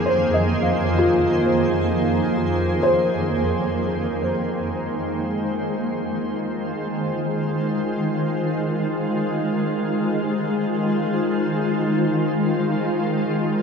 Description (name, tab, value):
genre	ambient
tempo	free time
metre	none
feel	none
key	F minor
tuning	A4 = 441 Hz
part	shimmering ambient pad	sustained chords	0.0-13.6 s	F2 to C5	-21 LUFS	equal	chorus, built-in reverb
part	twinkling granular texture	texture	0.1-3.8 s	G5	-50 LUFS	right 2 dB	none
part	felt-muted upright piano	arpeggios	0.1-13.6 s	F4 to F5	-24 LUFS	equal	tape echo
part	bowed-like drone	drone	5.8-13.6 s	none	barely audible	none	none
room	wet cathedral reverb, RT60 7.3 s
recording	dark, warm production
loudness	-20 LUFS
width	side -6 dB against mid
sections	0.0-3.8 A section; 3.8-13.6 B section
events	none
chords	0.0 Abadd9/F; 3.8 Fm7